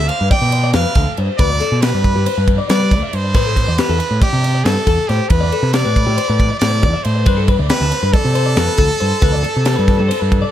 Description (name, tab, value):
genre	math rock and midwest emo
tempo	276 BPM (eighths)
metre	9/8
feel	straight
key	unclear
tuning	A4 = 436 Hz
part	brilliant trumpet	melody	0.0-10.5 s	G4 to G5	-20 LUFS	right 2 dB	none
part	twelve-string electric guitar	arpeggios	0.0-10.5 s	G4 to E5	-22 LUFS	left 9 dB	spring reverb
part	growling picked electric bass	bass	0.0-10.4 s	D2 to G3	-17 LUFS	equal	overdrive
part	crisp fusion drum kit	drums	0.1-10.4 s	crash cymbal, kick drum, ride cymbal, snare drum	-18 LUFS	equal	none
room	little or no reverb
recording	dark, warm production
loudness	-13 LUFS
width	side -11 dB against mid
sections	0.0-10.5 A section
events	none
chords	0.0 Gadd9; 3.3 Amadd9; 7.3 Gsus4